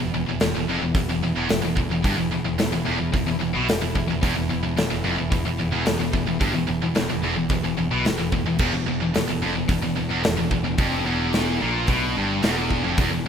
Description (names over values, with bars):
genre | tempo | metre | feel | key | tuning
heavy metal | 110 BPM | 4/4 | straight | unclear | A4 = 440 Hz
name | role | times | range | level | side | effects
warm chamber string section | sustained chords | 0.0-13.3 s | E3 to E4 | -36 LUFS | left 1 dB | none
heavy high-gain guitar | riff | 0.0-13.3 s | E2 to B2 | -26 LUFS | left 10 dB | distortion
heavy high-gain guitar | riff | 0.0-13.3 s | E2 to B2 | -27 LUFS | right 10 dB | distortion
scooped high-gain guitar | riff | 0.0-13.3 s | E2 to B2 | -32 LUFS | equal | distortion
growling picked electric bass | bass | 0.0-13.3 s | E1 to B1 | -29 LUFS | right 1 dB | overdrive
big rock drum kit | drums | 0.4-13.1 s | crash cymbal, hi-hat, kick drum, snare drum | -26 LUFS | equal | none
room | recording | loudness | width
small room ambience | rough home demo mix | -20 LUFS | side -8 dB against mid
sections
0.0-13.3 A section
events
none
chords
0.0 Em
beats
0.41 0.95 1.50 | 2.04 2.59 3.13 3.68 | 4.23 4.77 5.32 5.87 | 6.41 6.96 7.51 8.06 | 8.60 9.15 9.70 10.25 | 10.79 11.34 11.89 12.44 | 12.99